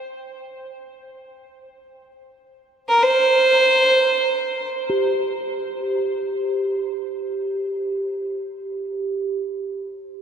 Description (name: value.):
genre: world meditative, free-time meditation music.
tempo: free time.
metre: none.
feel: none.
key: unclear.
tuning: A4 = 440 Hz.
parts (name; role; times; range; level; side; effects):
warm fiddle; melody; 2.9-4.7 s; Bb4 to C5; -18 LUFS; right 1 dB; none.
bronze singing bowl; texture; 4.9-8.1 s; G4; -24 LUFS; right 2 dB; none.
room: wet huge ambient reverb, RT60 8.2 s.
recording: in a vast, echoing space.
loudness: -18 LUFS.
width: side -8 dB against mid.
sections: 0.0-4.9 A section; 4.9-8.7 B section.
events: none.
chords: none.